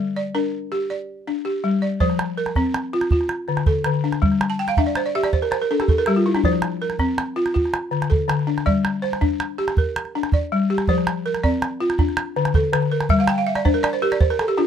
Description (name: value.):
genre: west african traditional, West African string and xylophone music.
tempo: 108 BPM (dotted quarters).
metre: 12/8.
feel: straight.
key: unclear.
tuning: A4 = 440 Hz.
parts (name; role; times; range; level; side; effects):
balafon; arpeggios; 0.0-14.7 s; D3 to A5; -20 LUFS; left 1 dB; none.
calabash; percussion; 2.0-14.6 s; none; -21 LUFS; right 2 dB; none.
room: little or no reverb.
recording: close, detailed microphones.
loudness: -18 LUFS.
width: side -8 dB against mid.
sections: 0.0-2.0 A section; 2.0-10.9 A section; 10.9-14.7 B section.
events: balafon fill 4.5-6.4, 13.1-14.7.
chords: 0.0 Gm; 2.0 F5; 3.1 Dm; 4.2 G5; 6.4 F5; 7.5 Dm; 8.7 Gm; 10.9 F5; 12.0 D5; 13.1 Gm.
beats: 0.33 0.89 1.44 | 2.00 2.55 3.11 3.66 | 4.22 4.77 5.33 5.88 | 6.44 6.99 7.55 8.10 | 8.66 9.21 9.77 10.32 | 10.88 11.43 11.99 12.54 | 13.10 13.65 14.20.